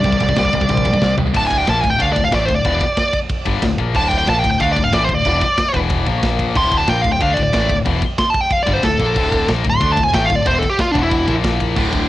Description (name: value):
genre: heavy metal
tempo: 184 BPM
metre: 4/4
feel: straight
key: D minor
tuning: A4 = 440 Hz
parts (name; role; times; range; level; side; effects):
- high-gain lead guitar; melody; 0.0-11.3 s; D4 to C6; -18 LUFS; right 1 dB; distortion, analog delay
- scooped high-gain guitar; riff; 0.0-1.3, 11.8-12.1 s; D2 to G3; -23 LUFS; right 8 dB; distortion, cassette tape
- tight distorted guitar; riff; 0.0-12.1 s; D2 to D4; -20 LUFS; left 6 dB; distortion, cassette tape
- growling fingered electric bass; bass; 0.0-12.1 s; D1 to D2; -21 LUFS; right 1 dB; overdrive
- tight metal drum kit; drums; 0.0-12.0 s; crash cymbal, kick drum, ride cymbal, snare drum, toms; -21 LUFS; right 1 dB; cassette tape
room: light reverb, studio ambience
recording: home recording on cassette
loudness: -14 LUFS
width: side -15 dB against mid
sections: 0.0-1.3 A section; 1.3-12.1 B section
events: drum fill 1.0-1.3; lead electric guitar solo 1.3-12.1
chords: 0.0 C5; 1.3 D5; 5.7 E5; 6.1 Bb5; 6.6 D5; 11.0 E5; 11.3 Bb5